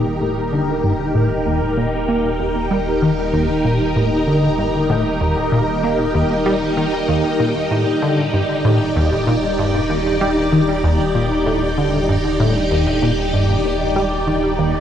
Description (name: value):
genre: ambient, sequencer-driven space music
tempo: 96 BPM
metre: 4/4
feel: straight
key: Eb major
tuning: A4 = 440 Hz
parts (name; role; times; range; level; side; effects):
- string machine, full ensemble; sustained chords; 0.0-14.8 s; Eb4 to D5; -18 LUFS; equal; phaser, ensemble chorus, shimmer reverb
- tight sequenced synth; riff; 0.0-14.7 s; Eb2 to Bb3; -19 LUFS; equal; chorus, cassette tape, analog delay
- round analog bass; bass; 0.0-14.8 s; Eb1; -28 LUFS; equal; tube saturation
- bubbling stepped-filter texture; texture; 0.0-14.8 s; G5; -34 LUFS; right 2 dB; chorus, built-in reverb, shimmer reverb
room: wet huge ambient reverb, RT60 7.8 s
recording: none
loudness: -15 LUFS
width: side -9 dB against mid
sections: 0.0-14.8 A section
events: fade-in on synth texture 0.0-14.8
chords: 0.0 Eb